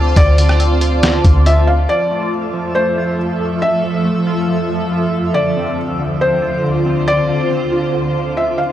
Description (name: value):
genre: hip hop, atmospheric cloud-rap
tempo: 139 BPM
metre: 4/4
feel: half-time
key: F major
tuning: A4 = 439 Hz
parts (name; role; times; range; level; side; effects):
- granular cloud pad; sustained chords; 0.0-8.7 s; D2 to A5; -18 LUFS; equal; built-in reverb, phaser, sidechain pumping
- warbly lo-fi synth keys; arpeggios; 0.0-8.7 s; D3 to F4; -22 LUFS; right 1 dB; chorus, tape echo
- soft 808-style bass; bass; 0.0-1.9 s; D2; -12 LUFS; equal; none
- twinkling granular texture; texture; 0.0-8.7 s; A3 to E5; -27 LUFS; right 1 dB; built-in reverb
- felt-muted upright piano; melody; 0.2-8.7 s; C5 to F5; -19 LUFS; left 1 dB; tape echo
- lo-fi sampler-style drum kit; drums; 0.2-1.6 s; hi-hat, kick drum, rim click, snare drum; -15 LUFS; equal; none
room: digital ambience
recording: dry, gritty hardware recording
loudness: -13 LUFS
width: side -12 dB against mid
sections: 0.0-1.9 A section; 1.9-8.7 B section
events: none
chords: 0.0 Dm7; 1.9 Fmaj7; 5.3 Dm7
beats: | 0.17 0.60 1.03 1.46 | 1.89 2.32 2.76 3.19 | 3.62 4.05 4.48 4.91 | 5.35 5.78 6.21 6.64 | 7.07 7.50 7.94 8.37